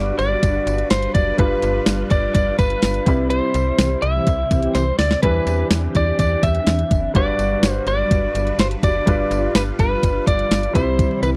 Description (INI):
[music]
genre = 1980s-style pop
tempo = 125 BPM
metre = 4/4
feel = straight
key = G major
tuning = A4 = 441 Hz
[part]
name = lightly driven lead guitar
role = melody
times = 0.0-11.3 s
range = B4 to E5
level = -23 LUFS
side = equal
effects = none
[part]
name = clear baby grand piano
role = accompaniment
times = 0.0-11.4 s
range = G2 to B5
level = -28 LUFS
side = equal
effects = none
[part]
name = string machine, cellos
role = sustained chords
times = 0.0-11.4 s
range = C3 to B4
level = -30 LUFS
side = equal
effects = phaser, ensemble chorus
[part]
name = slap-like FM bass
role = bass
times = 0.0-11.4 s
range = F#1 to E2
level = -25 LUFS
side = equal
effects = none
[part]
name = clean 12-bit digital drum machine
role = drums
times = 0.2-11.3 s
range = hi-hat, kick drum, snare drum, tambourine, toms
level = -21 LUFS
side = equal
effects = none
[part]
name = tambourine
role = percussion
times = 0.2-11.3 s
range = none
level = -43 LUFS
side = equal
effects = none
[part]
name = mellow synth brass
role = stabs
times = 3.8-4.8 s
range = E3 to G4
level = -27 LUFS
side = equal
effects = chorus
[sound]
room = light reverb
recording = dry, close 1970s-style studio recording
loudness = -18 LUFS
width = mono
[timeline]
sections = 0.0-11.4 A section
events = band accent 3.3-5.2; drum fill 4.7-5.2, 11.0-11.4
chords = 0.0 Gmaj7; 1.4 G7; 3.1 Cmaj7; 5.2 Em7; 7.1 Gmaj7; 9.1 G7; 10.7 Cmaj7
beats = 0.43 0.91 | 1.39 1.87 2.35 2.83 | 3.31 3.79 4.27 4.75 | 5.23 5.71 6.19 6.67 | 7.15 7.63 8.11 8.59 | 9.07 9.55 10.03 10.51 | 10.99